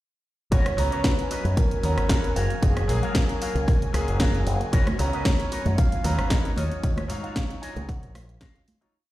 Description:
nu-disco, nu disco; 114 BPM; 4/4; swing 53% on 16ths; G# dorian; A4 = 440 Hz
soft octave-layered synth lead; melody; 0.5-7.4 s; G#4 to E#5; -33 LUFS; equal; chorus, digital delay
lush unison pad; sustained chords; 1.2-8.9 s; F#3 to G#5; -37 LUFS; equal; chorus, phaser, sidechain pumping
electric guitar with an envelope filter; riff; 0.5-8.8 s; E#4 to G#5; -36 LUFS; left 2 dB; analog chorus, vintage 12-bit sampler grit, digital delay
fingered electric bass with an envelope filter; bass; 0.5-8.4 s; F#1 to G#2; -26 LUFS; equal
electronic kick drum; drums; 0.5-8.5 s; -23 LUFS; equal
house drum kit; drums; 0.5-8.9 s; hi-hat, rim click, snare drum; -31 LUFS; equal
bright grand piano; accompaniment; 0.8-8.9 s; F#3 to A#5; -32 LUFS; equal; sidechain pumping, digital delay
congas; percussion; 4.9-8.8 s; -34 LUFS; right 2 dB
light reverb; played on a big sound system in a bare room, stone room reverb; -21 LUFS; side -16 dB against mid
0.5-8.9 drop
drop 0.5-8.9; clean electric guitar fill 3.9-4.7, 7.4-8.9; fade-out 6.1-8.9
0.5 G#m11; 2.4 F#maj9; 4.7 G#m11; 6.6 D#m9

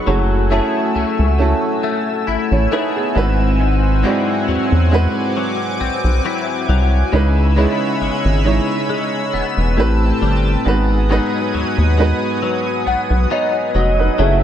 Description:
contemporary R&B; 68 BPM; 4/4; swing 54% on 16ths; A4 = 440 Hz
clear baby grand piano; accompaniment; 0.0-14.4 s; G#3 to D#5; -20 LUFS; right 4 dB
chorused pulse-width pad; sustained chords; 0.0-14.4 s; A3 to E6; -23 LUFS; equal
direct-recorded clean electric guitar; arpeggios; 0.0-14.4 s; G#2 to G#4; -22 LUFS; left 8 dB; ensemble chorus, ping-pong delay
rubbery square bass; bass; 0.1-14.4 s; E1 to E2; -16 LUFS; equal
warm velvety synth lead; melody; 12.9-14.4 s; D#5 to F#5; -19 LUFS; left 1 dB; chorus
light reverb; -14 LUFS; side -10 dB against mid
0.0-14.2 A section
0.1 F#m9; 3.2 G#7alt; 7.1 C#m7; 9.8 Am7; 10.7 G#m7

